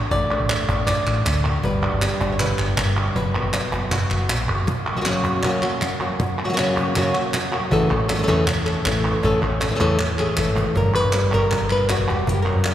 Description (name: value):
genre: flamenco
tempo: 158 BPM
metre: 4/4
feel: straight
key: unclear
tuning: A4 = 439 Hz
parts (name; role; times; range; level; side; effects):
- flamenco guitar; melody; 0.0-12.7 s; F#2 to D5; -22 LUFS; left 1 dB; none
- woody fretless electric bass; bass; 0.0-4.7, 7.7-12.7 s; E1 to G2; -24 LUFS; equal; none
- cajon; percussion; 0.1-12.7 s; none; -28 LUFS; right 1 dB; none
- palmas hand claps; percussion; 0.3-12.7 s; none; -25 LUFS; right 1 dB; none
room: wet cathedral reverb, RT60 5.2 s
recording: recorded in a church or concert hall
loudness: -18 LUFS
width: side -11 dB against mid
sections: 0.0-4.7 A section; 4.7-10.8 B section; 10.8-12.7 C section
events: drum fill 9.8-10.8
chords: 0.0 D/A; 1.6 G; 3.2 F#sus4; 4.7 F#; 7.7 A; 10.8 G